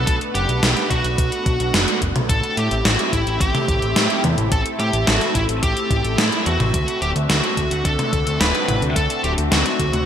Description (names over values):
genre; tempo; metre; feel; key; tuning
synthwave; 108 BPM; 4/4; straight; unclear; A4 = 439 Hz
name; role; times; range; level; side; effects
high-gain lead guitar; melody; 0.0-10.1 s; E4 to B4; -23 LUFS; equal; distortion, ping-pong delay
lush unison pad; sustained chords; 0.0-10.1 s; A3 to F#5; -25 LUFS; right 1 dB; chorus, phaser, sidechain pumping
fat analog bass; bass; 0.0-10.1 s; D1 to A2; -22 LUFS; equal; sidechain pumping
electronic kick drum; drums; 0.1-9.9 s; none; -23 LUFS; equal; none
gated 80s digital drum machine; drums; 0.1-10.0 s; hi-hat, snare drum, toms; -21 LUFS; equal; gated reverb, gated reverb snare
room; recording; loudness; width
moderate lush hall reverb, RT60 2.1 s; bright 1980s-style digital production; -16 LUFS; side -9 dB against mid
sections
0.0-10.1 A section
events
none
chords
0.0 Bm7; 2.3 Am7; 6.7 D7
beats
| 0.07 0.63 1.18 1.74 | 2.29 2.85 3.41 3.96 | 4.52 5.07 5.63 6.18 | 6.74 7.29 7.85 8.41 | 8.96 9.52